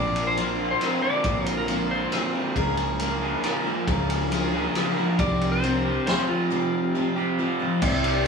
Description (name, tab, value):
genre	folk rock and heartland rock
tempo	137 BPM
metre	3/4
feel	straight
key	unclear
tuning	A4 = 440 Hz
part	clean lap steel guitar	melody	0.0-2.3, 5.2-7.3 s	F4 to D5	-27 LUFS	equal	none
part	picked twelve-string acoustic guitar	accompaniment	0.0-8.3 s	Bb2 to D5	-29 LUFS	left 4 dB	none
part	crunchy overdriven guitar	riff	0.0-8.3 s	Bb2 to Ab4	-26 LUFS	right 1 dB	none
part	hollow-body short-scale picked electric bass	bass	0.0-8.3 s	Bb1 to Db2	-30 LUFS	right 1 dB	none
part	vintage drum kit	drums	0.2-8.1 s	crash cymbal, kick drum, ride cymbal, rim click, snare drum	-29 LUFS	equal	none
part	clear baby grand piano	accompaniment	7.8-8.3 s	E4 to D5	-33 LUFS	right 5 dB	none
part	accordion	sustained chords	7.8-8.3 s	D4 to C5	-34 LUFS	right 4 dB	none
room	wet studio reverb, RT60 0.7 s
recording	band playing live in one room, small room reverb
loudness	-22 LUFS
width	side -5 dB against mid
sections	0.0-7.8 A section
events	none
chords	0.0 Bbadd9; 2.6 Db6; 5.2 Csus4